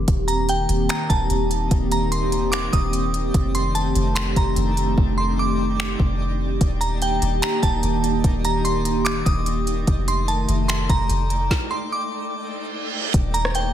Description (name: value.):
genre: hip hop, atmospheric cloud-rap.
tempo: 147 BPM.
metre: 4/4.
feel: half-time.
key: Eb lydian.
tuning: A4 = 440 Hz.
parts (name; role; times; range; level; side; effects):
dark analog pad; sustained chords; 0.0-13.7 s; Eb3 to G4; -25 LUFS; equal; chorus, sidechain pumping.
soft 808-style bass; bass; 0.0-13.7 s; Eb1 to F1; -24 LUFS; equal; none.
smooth R&B drum kit; drums; 0.1-13.6 s; finger snaps, hi-hat, kick drum, rim click, snare drum; -23 LUFS; equal; none.
twinkling granular texture; texture; 0.8-13.7 s; A3 to G5; -33 LUFS; equal; built-in reverb.
glassy synth bell; melody; 0.3-13.7 s; G5 to Eb6; -26 LUFS; right 1 dB; chorus, ping-pong delay.
reverse cymbal; sound effects; 12.5-13.1 s; none; -27 LUFS; right 7 dB; none.
room: light reverb.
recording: none.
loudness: -19 LUFS.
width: side -10 dB against mid.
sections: 0.0-13.1 A section.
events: hi-hats muted 5.0-6.6; stop 11.5-13.1; reverse cymbal 12.5-13.1.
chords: 0.1 Ebmaj7; 3.3 F13; 6.6 Ebmaj7; 9.9 F13; 13.1 Ebmaj7.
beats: | 0.08 0.49 0.89 1.30 | 1.71 2.12 2.53 2.94 | 3.34 3.75 4.16 4.57 | 4.98 5.38 5.79 6.20 | 6.61 7.02 7.42 7.83 | 8.24 8.65 9.06 9.47 | 9.87 10.28 10.69 11.10 | 11.51 11.91 12.32 12.73 | 13.14 13.55.